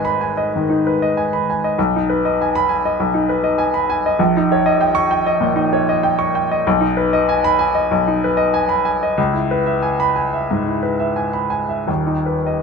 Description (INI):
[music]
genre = classical, romantic character piece for solo piano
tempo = 79-101 BPM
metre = 4/4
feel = rubato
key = G# minor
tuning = A4 = 440 Hz
[part]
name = warm baby grand piano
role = solo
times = 0.0-12.6 s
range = D#1 to C#6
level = -15 LUFS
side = equal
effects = none
[sound]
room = light reverb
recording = minimal, uncompressed stereo recording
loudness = -15 LUFS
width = side -5 dB against mid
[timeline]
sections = 0.0-12.6 A section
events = none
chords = 0.0 G#m; 1.8 G#m/B; 4.2 D#7/A#; 6.7 G#m/B; 9.2 C#m7; 11.9 G#m/D# (rootless)